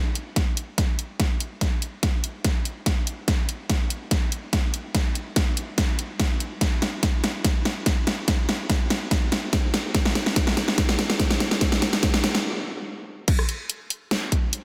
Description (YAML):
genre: dubstep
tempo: 144 BPM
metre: 4/4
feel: half-time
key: none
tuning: none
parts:
  - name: dubstep drum kit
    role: drums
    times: 0.2-14.6 s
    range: crash cymbal, hi-hat, rim click, snare drum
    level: -27 LUFS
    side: equal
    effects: none
  - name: electronic kick drum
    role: drums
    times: 0.4-14.4 s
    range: none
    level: -26 LUFS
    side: equal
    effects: overdrive
room: wet lush hall reverb, RT60 2.1 s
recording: dense, heavily limited modern master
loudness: -24 LUFS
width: mono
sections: 0.0-13.3 A section; 13.3-14.6 B section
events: build-up 0.0-13.3; drum fill 0.0-12.4; stop 12.4-13.3; drop 13.3-14.6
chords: none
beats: 0.36 0.78 1.20 | 1.61 2.03 2.45 2.86 | 3.28 3.70 4.11 4.53 | 4.95 5.36 5.78 6.20 | 6.61 7.03 7.45 7.86 | 8.28 8.70 9.11 9.53 | 9.95 10.36 10.78 11.20 | 11.61 12.03 12.45 12.86 | 13.28 13.70 14.11 14.53